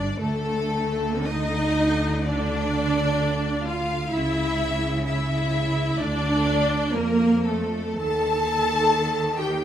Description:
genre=classical, slow romantic movement for string orchestra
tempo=54-66 BPM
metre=4/4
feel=rubato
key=unclear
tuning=A4 = 439 Hz
part: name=rich chamber violin section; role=melody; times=0.0-9.6 s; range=A4 to A5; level=-30 LUFS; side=left 5 dB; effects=none
part: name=clear chamber violin section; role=second line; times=0.0-9.6 s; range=A4 to A5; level=-30 LUFS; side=left 4 dB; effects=none
part: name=rich symphonic viola section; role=accompaniment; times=0.0-9.6 s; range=A3 to A4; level=-24 LUFS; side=right 2 dB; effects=none
part: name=clear chamber double bass section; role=bass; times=0.0-9.6 s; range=G1 to F2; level=-30 LUFS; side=right 2 dB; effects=none
part: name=rich studio cello section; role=bass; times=0.0-9.6 s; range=G2 to F3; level=-29 LUFS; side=right 1 dB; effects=none
room=moderate recital hall reverb, RT60 1.5 s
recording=close, detailed microphones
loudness=-21 LUFS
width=side -10 dB against mid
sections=0.0-9.6 A section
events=none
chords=0.2 D5; 4.1 C#m; 6.0 Dm; 8.0 Cm/Eb (rootless)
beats=| 0.20 1.26 2.24 3.19 | 4.13 5.05 5.99 6.94 | 7.97 8.93

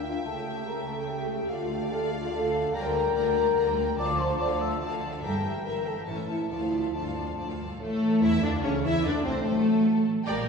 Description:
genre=classical, dramatic, fast romantic movement for symphony orchestra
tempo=145 BPM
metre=3/4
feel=straight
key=D minor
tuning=A4 = 441 Hz
part: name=warm symphonic violin section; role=melody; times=0.0-10.5 s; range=A4 to Bb5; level=-38 LUFS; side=left 3 dB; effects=none
part: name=dark clarinet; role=second line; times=0.0-10.5 s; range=A3 to Bb5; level=-38 LUFS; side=left 1 dB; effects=none
part: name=warm symphonic violin section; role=second line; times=0.0-10.5 s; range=A3 to G5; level=-39 LUFS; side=left 2 dB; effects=none
part: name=dark symphonic viola section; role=accompaniment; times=0.0-10.5 s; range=F3 to D5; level=-37 LUFS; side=right 2 dB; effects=none
part: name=warm bassoon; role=accompaniment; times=0.0-10.5 s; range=A2 to Bb3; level=-37 LUFS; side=right 2 dB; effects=none
part: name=mellow French horn section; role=sustained chords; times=0.0-10.5 s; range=E3 to E5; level=-30 LUFS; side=left 3 dB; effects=none
part: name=rich symphonic double bass section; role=bass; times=0.0-10.5 s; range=G1 to E2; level=-35 LUFS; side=right 2 dB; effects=none
part: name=warm symphonic cello section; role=bass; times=0.0-10.5 s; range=D2 to E4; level=-30 LUFS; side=equal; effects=none
part: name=mellow hollow concert flute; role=second line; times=0.1-10.5 s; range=C4 to E6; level=-36 LUFS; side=equal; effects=none
room=wet recital hall reverb, RT60 1.4 s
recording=recorded in a church or concert hall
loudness=-25 LUFS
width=side -5 dB against mid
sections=0.0-7.8 A section; 7.8-10.5 B section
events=none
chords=0.3 A7/C#; 1.5 Dm; 2.7 Gm/D; 4.0 Dm; 5.2 Edim/G; 6.1 A; 6.5 Dm; 7.8 A; 9.1 D7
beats=| 0.26 0.67 1.08 | 1.50 1.91 2.32 | 2.73 3.15 3.56 | 3.98 4.39 4.81 | 5.24 5.66 6.08 | 6.51 6.95 7.38 | 7.81 8.23 8.64 | 9.05 9.46 9.87 | 10.27

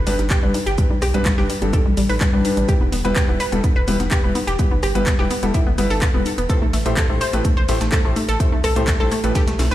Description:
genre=progressive house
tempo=126 BPM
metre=4/4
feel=straight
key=unclear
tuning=A4 = 442 Hz
part: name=analog pluck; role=arpeggios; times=0.0-9.7 s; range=G3 to C5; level=-23 LUFS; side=equal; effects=chorus, sidechain pumping, ping-pong delay
part: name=round analog bass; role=bass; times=0.0-9.7 s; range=E1 to C2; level=-22 LUFS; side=equal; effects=sidechain pumping
part: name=warm concert grand piano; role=stabs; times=0.1-9.3 s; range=G2 to C5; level=-24 LUFS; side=left 2 dB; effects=sidechain pumping, ping-pong delay
part: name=breakbeat sampler-style drum kit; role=drums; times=0.1-9.7 s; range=hi-hat, shaker, snare drum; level=-36 LUFS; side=right 2 dB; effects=sidechain pumping on perc, high-pass filter on perc, high-pass filter on snare, sidechain pumping on hats, high-pass filter on hats
part: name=house drum kit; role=drums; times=0.1-9.7 s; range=handclaps, hi-hat, rim click, snare drum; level=-28 LUFS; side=equal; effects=none
part: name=congas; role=percussion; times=0.2-9.7 s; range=none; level=-32 LUFS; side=left 3 dB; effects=overdrive, sidechain pumping on perc
part: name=electronic kick drum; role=drums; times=0.3-9.5 s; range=none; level=-19 LUFS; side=equal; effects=none
room=little or no reverb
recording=played on a big sound system in a bare room, stone room reverb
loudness=-16 LUFS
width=side -14 dB against mid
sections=0.0-9.7 A section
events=drum fill 9.6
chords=0.0 G; 2.7 Em; 6.5 Am7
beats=0.30 | 0.78 1.26 1.73 2.21 | 2.69 3.16 3.64 4.12 | 4.59 5.07 5.54 6.02 | 6.50 6.97 7.45 7.92 | 8.40 8.88 9.35

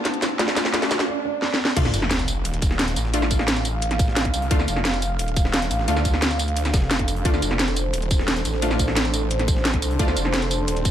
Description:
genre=dark technical drum and bass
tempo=175 BPM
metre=4/4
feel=straight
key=D phrygian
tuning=A4 = 440 Hz
part: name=dark analog pad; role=sustained chords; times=0.0-10.9 s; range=A3 to F5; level=-29 LUFS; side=right 2 dB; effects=chorus, sidechain pumping
part: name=orchestra-hit-like synth stab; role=stabs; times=0.0-10.9 s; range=A3 to F4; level=-29 LUFS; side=left 1 dB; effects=built-in reverb, tape echo
part: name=riser and sub drop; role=sound effects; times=0.0-3.1 s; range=none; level=-29 LUFS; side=right 1 dB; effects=none
part: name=dark studio string section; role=texture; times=0.0-1.1 s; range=D4 to A5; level=-38 LUFS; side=left 3 dB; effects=none
part: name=felt-muted upright piano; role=arpeggios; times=0.1-1.7 s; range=D4 to D5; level=-31 LUFS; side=right 5 dB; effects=vintage 12-bit sampler grit, sidechain pumping, tape echo
part: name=drum and bass drum kit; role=drums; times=0.1-10.9 s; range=crash cymbal, hi-hat, snare drum, tambourine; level=-24 LUFS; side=equal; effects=none
part: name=snarling distorted saw bass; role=bass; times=1.8-10.9 s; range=Eb1 to D2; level=-25 LUFS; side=equal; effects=distortion, overdrive
part: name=breakbeat sampler-style drum kit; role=drums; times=1.8-10.9 s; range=hi-hat, snare drum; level=-35 LUFS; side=equal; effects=none
part: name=electronic kick drum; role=drums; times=1.8-10.9 s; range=none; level=-22 LUFS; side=equal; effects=none
room=light reverb, digital ambience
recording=lossy compression artefacts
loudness=-19 LUFS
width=side -10 dB against mid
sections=0.0-1.8 A section; 1.8-10.9 B section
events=build-up 0.0-1.8; drum fill 0.0-1.1, 1.4-1.8; riser 0.0-1.1; break 1.1-1.8; drop 1.8-10.9; impact 1.8-3.1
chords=0.0 Dm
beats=0.05 | 0.39 0.74 1.08 1.42 | 1.76 2.11 2.45 2.79 | 3.14 3.48 3.82 4.17 | 4.51 4.85 5.19 5.54 | 5.88 6.22 6.57 6.91 | 7.25 7.59 7.94 8.28 | 8.62 8.96 9.31 9.65 | 9.99 10.34 10.68

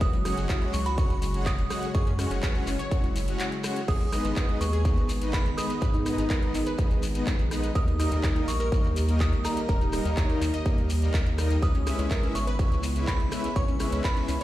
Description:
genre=progressive house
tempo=124 BPM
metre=4/4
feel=straight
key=G# minor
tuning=A4 = 440 Hz
part: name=glassy synth bell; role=melody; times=0.0-14.4 s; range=A#5 to D#6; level=-36 LUFS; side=right 3 dB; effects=chorus, tremolo, digital delay
part: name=airy breathy pad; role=sustained chords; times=0.0-14.4 s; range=C#3 to G#4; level=-35 LUFS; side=equal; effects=chorus, sidechain pumping
part: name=analog pluck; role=arpeggios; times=0.0-14.4 s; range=F#3 to D#5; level=-35 LUFS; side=equal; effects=chorus, vintage 12-bit sampler grit, sidechain pumping, digital delay
part: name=round analog bass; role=bass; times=0.0-14.4 s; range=D#1 to G#2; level=-28 LUFS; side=equal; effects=sidechain pumping
part: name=big-room dance drum kit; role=drums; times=0.0-14.4 s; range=crash cymbal, handclaps, hi-hat, rim click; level=-38 LUFS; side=equal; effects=none
part: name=electronic kick drum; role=drums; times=0.0-14.1 s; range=none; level=-25 LUFS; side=equal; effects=none
part: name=shekere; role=percussion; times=0.0-14.4 s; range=none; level=-42 LUFS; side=left 4 dB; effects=none
part: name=soft supersaw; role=stabs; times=0.3-14.3 s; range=G3 to F#5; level=-33 LUFS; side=left 2 dB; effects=sidechain pumping, digital delay
room=digital ambience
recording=played on a big sound system in a bare room, stone room reverb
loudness=-24 LUFS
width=side -14 dB against mid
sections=0.0-14.4 A section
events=none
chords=0.0 F#sus2; 3.9 G#m; 7.8 D#; 11.6 C#m7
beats=| 0.01 0.50 0.98 1.46 | 1.95 2.43 2.92 3.40 | 3.88 4.37 4.85 5.33 | 5.82 6.30 6.79 7.27 | 7.75 8.24 8.72 9.21 | 9.69 10.17 10.66 11.14 | 11.62 12.11 12.59 13.08 | 13.56 14.04

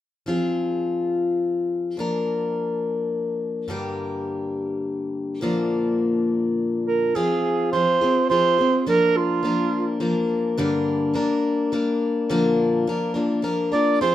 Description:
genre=acoustic folk duo or small band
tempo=105 BPM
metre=3/4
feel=straight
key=unclear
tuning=A4 = 437 Hz
part: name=picked plugged-in steel-string acoustic guitar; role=accompaniment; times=0.3-14.1 s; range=G2 to Bb4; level=-22 LUFS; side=left 2 dB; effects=none
part: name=warm alto saxophone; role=melody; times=6.9-10.0, 13.7-14.1 s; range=F4 to D5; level=-20 LUFS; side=right 4 dB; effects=none
room=wet studio reverb, RT60 0.6 s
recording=minimal, uncompressed stereo recording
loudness=-20 LUFS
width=side -12 dB against mid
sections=0.3-7.2 A section; 7.2-14.1 B section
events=none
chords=0.3 Fm; 2.0 Bb/F; 3.7 Gm; 5.4 Bb; 7.2 Fm; 8.9 Bb/F; 10.6 Gm; 12.3 Bb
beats=| 0.26 0.84 1.41 | 1.99 2.56 3.13 | 3.71 4.28 4.86 | 5.43 6.00 6.58 | 7.15 7.72 8.29 | 8.87 9.44 10.01 | 10.58 11.16 11.73 | 12.30 12.87 13.44 | 14.02

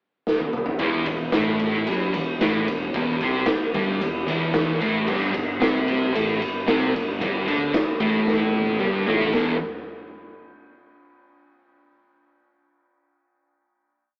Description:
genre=garage rock duo or trio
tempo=113 BPM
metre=4/4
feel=straight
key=E minor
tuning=A4 = 435 Hz
part: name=raw garage drum kit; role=drums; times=0.3-9.5 s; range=crash cymbal, kick drum, ride cymbal, snare drum, toms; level=-27 LUFS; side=equal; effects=none
part: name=fuzz guitar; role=riff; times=0.8-9.5 s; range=E2 to D4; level=-25 LUFS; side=equal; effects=distortion
part: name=fuzz fingered electric bass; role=bass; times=0.8-9.6 s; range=E1 to D2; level=-35 LUFS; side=equal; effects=overdrive
room=light reverb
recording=rough rehearsal-room recording, AM radio sound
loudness=-23 LUFS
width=mono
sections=0.0-0.8 pickup bar; 0.8-9.3 riff; 9.3-11.4 final chord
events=drum fill 0.3-0.8, 8.3-9.3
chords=0.0 N.C.; 0.8 Em; 5.1 G5; 9.3 E5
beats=0.27 | 0.80 1.34 1.87 2.41 | 2.94 3.47 4.01 4.54 | 5.08 5.61 6.14 6.67 | 7.20 7.74 8.27 8.79 | 9.32

